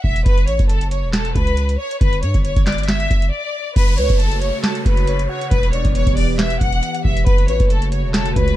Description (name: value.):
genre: hip hop, trap.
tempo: 137 BPM.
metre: 4/4.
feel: half-time.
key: F# phrygian.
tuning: A4 = 441 Hz.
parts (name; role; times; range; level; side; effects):
warm studio violin section; melody; 0.0-8.6 s; A4 to F#5; -23 LUFS; left 2 dB; tape echo.
long sustained 808-style bass; bass; 0.0-8.6 s; E1 to G2; -20 LUFS; equal; none.
booming analog drum machine; drums; 0.0-8.6 s; handclaps, hi-hat, kick drum, snare drum; -17 LUFS; equal; vintage 12-bit sampler grit.
hollow soft pad; sustained chords; 3.8-8.6 s; C#3 to C#5; -26 LUFS; right 2 dB; chorus.
downlifter; sound effects; 3.8-7.3 s; none; -32 LUFS; equal; none.
soft octave-layered synth lead; second line; 4.0-7.7 s; B4 to F#5; -26 LUFS; equal; chorus, phaser, tape echo.
room: little or no reverb.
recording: none.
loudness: -15 LUFS.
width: side -14 dB against mid.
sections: 0.0-3.8 A section; 3.8-8.6 B section.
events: break 3.3-3.8.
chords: 0.3 F#m; 2.0 G5; 3.8 F#m; 5.5 Em; 7.3 F#m.